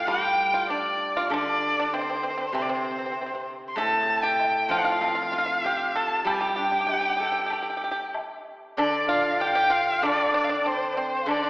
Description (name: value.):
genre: chinese traditional, Chinese chamber ensemble.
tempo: 97 BPM.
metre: 4/4.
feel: straight.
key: G shang mode.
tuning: A4 = 442 Hz.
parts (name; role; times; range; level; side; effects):
clear erhu; melody; 0.0-11.5 s; C5 to C6; -25 LUFS; equal; none.
pipa; second line; 0.0-11.5 s; C4 to A4; -28 LUFS; right 1 dB; none.
steel-string zither; accompaniment; 0.0-11.5 s; A2 to D5; -31 LUFS; equal; none.
woodblock; percussion; 0.1-11.4 s; none; -35 LUFS; equal; none.
mellow dizi; second line; 8.8-11.5 s; C5 to G5; -27 LUFS; equal; none.
room: wet concert hall reverb, RT60 2.2 s.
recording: recorded in a church or concert hall, AM radio sound.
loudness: -22 LUFS.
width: side -22 dB against mid.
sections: 0.0-8.8 A section; 8.8-11.5 B section.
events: none.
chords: none.